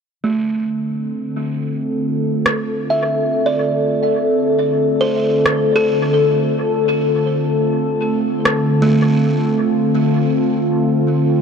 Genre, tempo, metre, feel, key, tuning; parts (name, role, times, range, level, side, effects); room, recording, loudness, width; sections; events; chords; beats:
ambient dub; free time; D minor; A4 = 439 Hz
warbly tape-like pad; sustained chords; 0.7-11.4 s; D3 to A4; -16 LUFS; left 1 dB; chorus, built-in reverb, phaser
buzzing kalimba; arpeggios; 0.2-10.5 s; A3 to E5; -21 LUFS; right 3 dB; low-pass filter, tape echo
electronic rim click; drums; 2.5-8.6 s; -21 LUFS; equal; dub echo
moderate huge ambient reverb, RT60 8.3 s; -15 LUFS; side -6 dB against mid
0.2-11.4 A section
filter sweep on kalimba 0.2-11.4
0.2 Dm7
free time